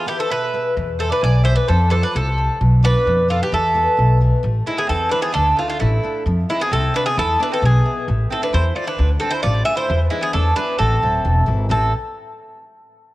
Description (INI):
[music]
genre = greek folk, Greek bouzouki band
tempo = 132 BPM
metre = 2/4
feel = straight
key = A harmonic minor from 4.4 s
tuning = A4 = 440 Hz
[part]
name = Greek bouzouki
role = melody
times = 0.0-11.9 s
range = E4 to E5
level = -20 LUFS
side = equal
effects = cassette tape, analog delay
[part]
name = mandolin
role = second line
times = 0.0-11.9 s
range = G#3 to G#5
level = -28 LUFS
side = right 6 dB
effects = cassette tape
[part]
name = picked steel-string acoustic guitar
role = accompaniment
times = 0.0-11.9 s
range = A2 to C5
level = -28 LUFS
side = left 6 dB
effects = cassette tape
[part]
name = upright bass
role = bass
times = 0.8-11.9 s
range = D1 to F2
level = -17 LUFS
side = equal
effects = none
[sound]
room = light reverb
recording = home recording on cassette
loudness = -15 LUFS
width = side -17 dB against mid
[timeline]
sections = 0.0-4.4 A section; 4.4-11.7 B section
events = none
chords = 0.0 E; 1.7 F; 2.6 Bdim; 3.5 E; 4.4 Am; 5.4 Dm; 6.3 F; 7.2 E; 8.1 Am; 9.0 Dm; 9.9 E7; 10.8 Am